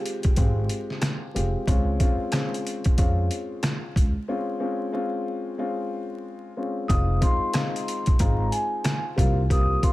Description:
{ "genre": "hip hop, boom-bap hip-hop", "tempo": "92 BPM", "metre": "4/4", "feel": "swing 62% on 16ths", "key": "F minor", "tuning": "A4 = 441 Hz", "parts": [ { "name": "dark concert grand piano", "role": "accompaniment", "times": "0.0-9.9 s", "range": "G3 to G4", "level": "-29 LUFS", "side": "left 2 dB", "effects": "high-pass filter, low-pass filter" }, { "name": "trip hop sampler-style drum kit", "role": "drums", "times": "0.1-9.9 s", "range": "hi-hat, kick drum, rim click, snare drum", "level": "-23 LUFS", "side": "equal", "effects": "none" }, { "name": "upright bass", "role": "bass", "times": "0.4-9.7 s", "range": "F1 to F2", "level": "-25 LUFS", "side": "equal", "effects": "none" }, { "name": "vibraphone with soft mallets", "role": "melody", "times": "6.9-9.9 s", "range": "Ab5 to Eb6", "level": "-29 LUFS", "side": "equal", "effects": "high-pass filter, low-pass filter" } ], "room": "little or no reverb", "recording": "vinyl crackle", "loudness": "-22 LUFS", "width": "side -18 dB against mid", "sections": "0.0-6.9 A section; 6.9-9.9 B section", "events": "break 4.3-6.9", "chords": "0.0 Fmadd9; 1.7 Dbmaj7; 6.9 Fm7; 9.2 C7sus4", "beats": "0.37 1.02 | 1.68 2.33 2.98 3.63 | 4.29 4.94 5.59 6.24 | 6.89 7.55 8.20 8.85 | 9.50" }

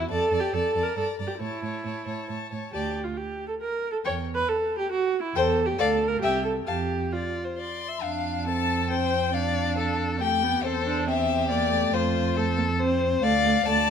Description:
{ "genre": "quick classical-period movement for string quartet", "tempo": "138 BPM", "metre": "3/4", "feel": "straight", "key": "D minor, F major from 5.4 s", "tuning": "A4 = 440 Hz", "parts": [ { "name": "warm violin", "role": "melody", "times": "0.0-13.9 s", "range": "C5 to C6", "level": "-29 LUFS", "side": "left 9 dB", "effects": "none" }, { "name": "rich violin", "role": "second line", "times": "0.0-13.9 s", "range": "E4 to F5", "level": "-29 LUFS", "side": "left 4 dB", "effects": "none" }, { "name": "rich viola", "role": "accompaniment", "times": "0.0-13.9 s", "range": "A3 to C#5", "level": "-28 LUFS", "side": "right 2 dB", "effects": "none" }, { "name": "rich cello", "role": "bass", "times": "0.0-13.9 s", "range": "C2 to A2", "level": "-30 LUFS", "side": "right 5 dB", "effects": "none" } ], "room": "light reverb", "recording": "close, detailed microphones", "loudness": "-23 LUFS", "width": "side -7 dB against mid", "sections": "0.0-8.0 A section; 8.0-13.9 B section", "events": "none", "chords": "0.1 Dm/F; 1.0 Gm; 1.4 A; 2.7 D5; 4.1 N.C.; 5.4 C/E; 5.8 Dm; 6.2 C; 6.7 F5; 8.0 F; 9.3 G7/F; 10.6 C7/E; 11.9 F; 13.2 Dm", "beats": "| 0.10 0.53 0.97 | 1.41 1.85 2.29 | 2.73 3.18 3.62 | 4.05 4.49 4.92 | 5.36 5.79 6.22 | 6.67 7.12 7.58 | 8.03 8.47 8.91 | 9.34 9.78 10.21 | 10.64 11.07 11.51 | 11.94 12.37 12.80 | 13.23 13.66" }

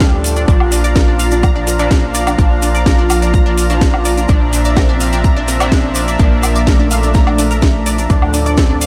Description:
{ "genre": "melodic techno", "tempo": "126 BPM", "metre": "4/4", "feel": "straight", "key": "unclear", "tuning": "A4 = 440 Hz", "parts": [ { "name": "fat analog lead", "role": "melody", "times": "0.0-8.9 s", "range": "A3 to G4", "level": "-23 LUFS", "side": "equal", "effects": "lush chorus, sidechain pumping, delay" }, { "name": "warm analog pad", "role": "sustained chords", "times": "0.0-8.9 s", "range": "F3 to Bb5", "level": "-24 LUFS", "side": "equal", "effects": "chorus, sidechain pumping" }, { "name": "unison pluck", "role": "arpeggios", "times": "0.0-8.9 s", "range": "D4 to Bb6", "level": "-24 LUFS", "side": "equal", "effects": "ensemble chorus, sidechain pumping, analog delay" }, { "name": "sync-sweep polysynth", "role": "stabs", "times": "0.0-8.9 s", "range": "A2 to D4", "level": "-25 LUFS", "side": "equal", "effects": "chorus, sidechain pumping, analog delay" }, { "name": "tight sequencer bass", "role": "bass", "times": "0.0-8.9 s", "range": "Bb1 to D2", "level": "-19 LUFS", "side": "equal", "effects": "sidechain pumping" }, { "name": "electronic kick drum", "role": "drums", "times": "0.0-8.7 s", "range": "none", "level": "-14 LUFS", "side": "equal", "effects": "overdrive" }, { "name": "house drum kit", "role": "drums", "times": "0.0-8.9 s", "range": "hi-hat, snare drum, woodblock", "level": "-23 LUFS", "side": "equal", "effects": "overdrive" }, { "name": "tube shaker", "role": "percussion", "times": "0.0-8.9 s", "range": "none", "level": "-28 LUFS", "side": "equal", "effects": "none" } ], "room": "light reverb, digital ambience", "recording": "none", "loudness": "-13 LUFS", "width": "mono", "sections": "0.0-8.9 A section", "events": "none", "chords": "0.5 Bb; 8.1 Dm", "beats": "0.00 | 0.48 0.96 1.43 1.91 | 2.38 2.86 3.34 3.81 | 4.29 4.77 5.24 5.72 | 6.19 6.67 7.15 7.62 | 8.10 8.57" }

